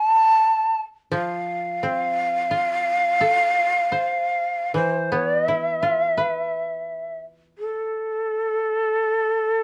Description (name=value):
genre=japanese traditional, Japanese chamber music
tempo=free time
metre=none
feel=none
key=unclear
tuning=A4 = 440 Hz
part: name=breathy shakuhachi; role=melody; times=0.0-9.6 s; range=A4 to A5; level=-22 LUFS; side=equal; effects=none
part: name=koto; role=accompaniment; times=1.1-8.9 s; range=E3 to C5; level=-30 LUFS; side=equal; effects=none
room=light reverb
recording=dark, warm production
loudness=-22 LUFS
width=mono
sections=0.0-9.6 A section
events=none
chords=none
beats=free time